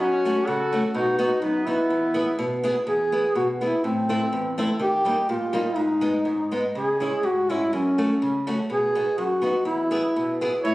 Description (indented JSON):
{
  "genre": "alpine folk, alpine dance band",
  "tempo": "124 BPM",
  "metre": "2/4",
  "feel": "swing 53% on 8ths, rubato",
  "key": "E major",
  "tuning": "A4 = 440 Hz",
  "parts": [
    { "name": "mellow duduk", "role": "melody", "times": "0.0-10.7 s", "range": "C4 to A4", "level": "-23 LUFS", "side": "equal", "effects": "none" },
    { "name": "clear trumpet", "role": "second line", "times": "0.0-2.4, 10.6-10.7 s", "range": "B3 to C#5", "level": "-29 LUFS", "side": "right 1 dB", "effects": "none" },
    { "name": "picked old ladder-braced acoustic guitar", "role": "accompaniment", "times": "0.0-10.7 s", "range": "E2 to G#4", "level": "-26 LUFS", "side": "equal", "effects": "none" }
  ],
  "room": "light reverb",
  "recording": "recorded on a phone in the room, studio reverb, compression",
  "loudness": "-21 LUFS",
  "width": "side -18 dB against mid",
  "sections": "0.0-2.9 A section; 2.9-10.6 B section",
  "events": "none",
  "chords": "0.0 F#m; 0.9 B; 1.9 E; 3.9 Am; 4.8 D#; 5.8 G#m; 6.8 C#m; 7.7 F#m; 8.7 B; 9.7 E"
}